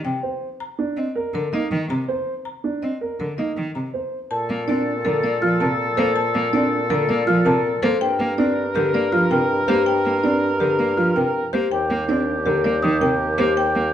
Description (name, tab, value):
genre	classical, minimalist pattern music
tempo	162 BPM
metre	5/4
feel	straight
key	Bb major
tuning	A4 = 440 Hz
part	marimba with hard mallets	melody	0.0-13.8 s	G4 to Bb5	-26 LUFS	left 6 dB	none
part	rich cello	accompaniment	0.0-13.9 s	C3 to C4	-24 LUFS	right 1 dB	none
part	dark concert grand piano	arpeggios	0.2-13.6 s	D4 to C5	-24 LUFS	right 3 dB	none
part	warm oboe	second line	4.3-13.9 s	G4 to Bb4	-25 LUFS	equal	none
part	mellow bassoon	bass	4.3-13.9 s	Eb2 to Bb2	-25 LUFS	equal	none
part	small celesta	arpeggios	5.4-13.1 s	Eb6 to F6	-26 LUFS	left 2 dB	none
room	wet large studio reverb, RT60 1.2 s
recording	dark, warm production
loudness	-18 LUFS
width	side -10 dB against mid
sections	0.0-4.3 A section; 4.3-13.9 A section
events	none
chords	0.0 N.C.; 0.6 Cm9; 4.3 Bbmaj7; 8.0 Gm7; 11.7 Ebmaj7